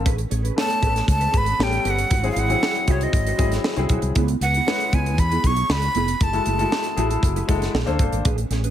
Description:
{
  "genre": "polished 1980s jazz-funk pop",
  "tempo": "117 BPM",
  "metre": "4/4",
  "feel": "straight",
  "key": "A major",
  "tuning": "A4 = 440 Hz",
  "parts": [
    { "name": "warm baby grand piano", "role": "accompaniment", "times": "0.0-8.3 s", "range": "F#3 to C5", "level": "-27 LUFS", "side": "left 5 dB", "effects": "wide subtle chorus" },
    { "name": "mellow electric guitar", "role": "riff", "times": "0.0-8.7 s", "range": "A3 to C#5", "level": "-30 LUFS", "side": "right 7 dB", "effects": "ensemble chorus" },
    { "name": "mellow fretless electric bass", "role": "bass", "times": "0.0-8.7 s", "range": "F1 to E2", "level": "-23 LUFS", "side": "equal", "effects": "none" },
    { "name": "tight funk drum kit", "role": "drums", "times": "0.1-8.7 s", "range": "hi-hat, kick drum, snare drum", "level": "-23 LUFS", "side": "equal", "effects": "none" },
    { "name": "breathy bright jazz flute", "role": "melody", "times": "0.6-7.2 s", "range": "C#5 to C#6", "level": "-23 LUFS", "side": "equal", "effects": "none" }
  ],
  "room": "light reverb, small room ambience",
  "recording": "none",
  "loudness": "-18 LUFS",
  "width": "side -11 dB against mid",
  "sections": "0.0-8.7 A section",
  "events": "none",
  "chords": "0.1 Amaj9; 1.6 A9; 2.1 G#7b13; 4.2 C#m7; 6.2 F#m9; 7.7 Bbmaj9",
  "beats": "| 0.06 0.57 1.08 1.59 | 2.11 2.62 3.13 3.65 | 4.16 4.67 5.18 5.70 | 6.21 6.72 7.23 7.74 | 8.25"
}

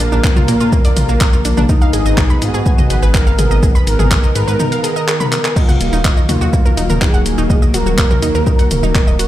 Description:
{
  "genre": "melodic techno",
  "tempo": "124 BPM",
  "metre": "4/4",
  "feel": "straight",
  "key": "Eb harmonic minor",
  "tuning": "A4 = 440 Hz",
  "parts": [
    { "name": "expressive synth lead", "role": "melody", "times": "0.0-9.3 s", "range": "Eb4 to Bb4", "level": "-21 LUFS", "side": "equal", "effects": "analog chorus, sidechain pumping, ping-pong delay" },
    { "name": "lush unison pad", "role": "sustained chords", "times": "0.0-9.3 s", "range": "D3 to Bb4", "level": "-21 LUFS", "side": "equal", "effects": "chorus, sidechain pumping" },
    { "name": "wide unison pluck", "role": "arpeggios", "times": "0.0-9.2 s", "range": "F3 to Cb6", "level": "-22 LUFS", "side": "right 2 dB", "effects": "sidechain pumping, ping-pong delay" },
    { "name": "dark detuned saw bass", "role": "bass", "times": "0.0-9.3 s", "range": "Eb1 to Bb2", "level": "-16 LUFS", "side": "equal", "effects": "sidechain pumping" },
    { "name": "deep house drum kit", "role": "drums", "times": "0.0-9.3 s", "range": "crash cymbal, handclaps, hi-hat, shaker, toms", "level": "-20 LUFS", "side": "equal", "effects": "overdrive" },
    { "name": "electronic kick drum", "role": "drums", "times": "0.2-9.0 s", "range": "none", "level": "-13 LUFS", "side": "equal", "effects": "overdrive" }
  ],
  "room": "digital ambience",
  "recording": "played on a big sound system in a bare room, large studio reverb",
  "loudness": "-11 LUFS",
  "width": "side -13 dB against mid",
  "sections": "0.0-9.3 A section",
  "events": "break 4.6-5.6; drum fill 5.3",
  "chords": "0.0 Bb; 1.7 Abm; 5.6 Ebm",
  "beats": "0.24 0.72 1.21 | 1.69 2.18 2.66 3.14 | 3.63 4.11 4.59 5.08 | 5.56 6.05 6.53 7.01 | 7.50 7.98 8.47 8.95"
}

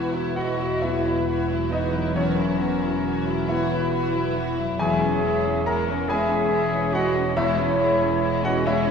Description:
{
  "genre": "cinematic",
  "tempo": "46 BPM (dotted quarters)",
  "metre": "6/8",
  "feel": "rubato",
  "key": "E lydian",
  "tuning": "A4 = 445 Hz",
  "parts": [
    { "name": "clear studio violin section", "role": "melody", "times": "0.0-8.9 s", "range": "C#4 to F#4", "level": "-35 LUFS", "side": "left 4 dB", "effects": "none" },
    { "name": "clear clarinet", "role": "second line", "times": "0.0-8.9 s", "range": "C#4 to A#4", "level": "-29 LUFS", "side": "left 2 dB", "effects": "none" },
    { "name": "large flute ensemble", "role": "second line", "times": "0.0-8.9 s", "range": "A#4 to F#5", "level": "-29 LUFS", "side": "right 1 dB", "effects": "none" },
    { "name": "warm studio violin section", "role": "second line", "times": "0.0-8.9 s", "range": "G#3 to E4", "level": "-32 LUFS", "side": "left 1 dB", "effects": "none" },
    { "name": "clear baby grand piano", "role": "accompaniment", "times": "0.0-8.9 s", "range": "E2 to A#5", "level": "-28 LUFS", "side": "left 1 dB", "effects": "none" },
    { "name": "warm studio viola section", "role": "accompaniment", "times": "0.0-8.9 s", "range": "E3 to G#3", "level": "-34 LUFS", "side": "right 2 dB", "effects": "none" },
    { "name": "warm French horn section", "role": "sustained chords", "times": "0.0-8.9 s", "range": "C#4 to A#4", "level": "-29 LUFS", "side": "left 2 dB", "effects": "none" },
    { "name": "concert harp", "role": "arpeggios", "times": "0.0-8.9 s", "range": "E3 to C#6", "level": "-30 LUFS", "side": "left 3 dB", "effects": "none" },
    { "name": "warm studio cello section", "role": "bass", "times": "0.0-8.9 s", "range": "E2", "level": "-31 LUFS", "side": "right 3 dB", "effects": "none" },
    { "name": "warm studio double bass section", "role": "bass", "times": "0.0-8.9 s", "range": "E1", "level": "-31 LUFS", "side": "right 6 dB", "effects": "none" }
  ],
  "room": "wet concert hall reverb, RT60 2.1 s",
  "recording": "heard from further back in the room, nothing above 11.0 kHz, faint mains hum",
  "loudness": "-20 LUFS",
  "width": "side -6 dB against mid",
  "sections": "0.0-8.9 A section",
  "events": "none",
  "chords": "0.0 Esus2; 4.8 C#m/E",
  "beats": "0.82 | 2.15 3.49 | 4.80 6.10 | 7.37 8.66"
}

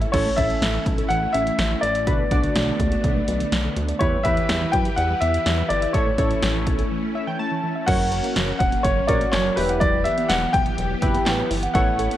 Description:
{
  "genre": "synth-pop",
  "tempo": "124 BPM",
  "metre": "4/4",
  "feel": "straight",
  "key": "unclear",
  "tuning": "A4 = 440 Hz",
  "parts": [
    { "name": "string machine, violas", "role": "sustained chords", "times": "0.0-12.2 s", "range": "E3 to B4", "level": "-29 LUFS", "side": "equal", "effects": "ensemble chorus" },
    { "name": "soft round pluck", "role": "arpeggios", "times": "0.0-12.2 s", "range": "D3 to F#5", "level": "-30 LUFS", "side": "right 3 dB", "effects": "chorus, tape echo" },
    { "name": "chorused synth bass", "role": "bass", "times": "0.0-12.1 s", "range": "E1 to F#2", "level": "-26 LUFS", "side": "equal", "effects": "none" },
    { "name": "punchy analog drum machine", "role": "drums", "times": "0.0-12.2 s", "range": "crash cymbal, handclaps, hi-hat, kick drum, snare drum", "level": "-24 LUFS", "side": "equal", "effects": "none" },
    { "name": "warm baby grand piano", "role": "melody", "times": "0.1-12.2 s", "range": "B4 to G5", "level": "-24 LUFS", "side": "left 2 dB", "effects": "none" },
    { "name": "warm analog keys", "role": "accompaniment", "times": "0.1-12.2 s", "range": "C#4 to A5", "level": "-28 LUFS", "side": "right 1 dB", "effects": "chorus" }
  ],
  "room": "light reverb, digital ambience",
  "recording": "none",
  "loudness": "-19 LUFS",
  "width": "side -12 dB against mid",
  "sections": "0.1-7.9 A section; 7.9-12.2 B section",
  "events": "break 6.9-7.9; synth keys fill 6.9-7.9",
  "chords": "0.1 A; 2.1 Bm7; 4.0 Em; 5.9 A; 7.9 F#; 9.6 Emadd9",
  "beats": "| 0.14 0.62 1.10 1.59 | 2.07 2.56 3.04 3.52 | 4.01 4.49 4.97 5.46 | 5.94 6.43 6.91 7.39 | 7.88 8.36 8.85 9.33 | 9.81 10.30 10.78 11.26 | 11.75"
}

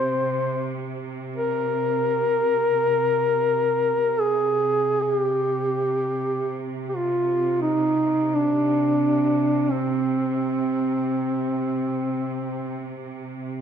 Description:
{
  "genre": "caucasian folk, Caucasian lament",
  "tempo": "free time",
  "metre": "none",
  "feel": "none",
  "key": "C minor",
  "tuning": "A4 = 440 Hz",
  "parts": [
    { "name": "dark duduk", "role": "melody", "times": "0.0-12.9 s", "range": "C4 to C5", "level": "-21 LUFS", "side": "equal", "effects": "none" },
    { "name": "rich studio string section", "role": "drone", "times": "0.0-13.6 s", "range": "C3", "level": "-29 LUFS", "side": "right 2 dB", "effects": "none" }
  ],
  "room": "moderate scoring stage reverb, RT60 2.0 s",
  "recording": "minimal, uncompressed stereo recording",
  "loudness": "-21 LUFS",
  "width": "side -8 dB against mid",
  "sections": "0.0-13.6 A section",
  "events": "slowing down 10.4-13.6",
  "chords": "none",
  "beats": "free time"
}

